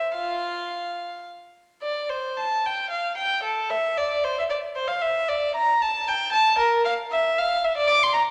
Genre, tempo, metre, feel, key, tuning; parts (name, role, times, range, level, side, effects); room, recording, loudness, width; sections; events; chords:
classical, baroque-style suite movement for unaccompanied violin; 105-118 BPM; 3/4; rubato; F major; A4 = 439 Hz
warm violin; solo; 0.0-8.2 s; F4 to D6; -24 LUFS; equal
wet recital hall reverb, RT60 1.5 s; -24 LUFS; mono
0.0-1.8 A section; 1.8-8.3 B section